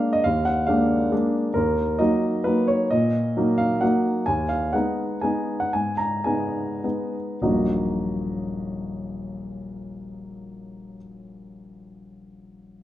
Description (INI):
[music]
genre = classical, piano waltz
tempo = 95-139 BPM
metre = 3/4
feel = rubato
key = Eb minor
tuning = A4 = 440 Hz
[part]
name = warm grand piano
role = solo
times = 0.0-12.8 s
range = Eb1 to Bb5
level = -22 LUFS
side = equal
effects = none
[sound]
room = wet recital hall reverb, RT60 1.4 s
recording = dark, warm production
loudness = -21 LUFS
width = side -13 dB against mid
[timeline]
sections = 0.0-7.4 A section; 7.4-10.8 B section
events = slowing down 3.6-7.4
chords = 0.0 Bb7/Eb; 1.6 Ebm; 4.3 Abm/Eb; 7.4 Ebm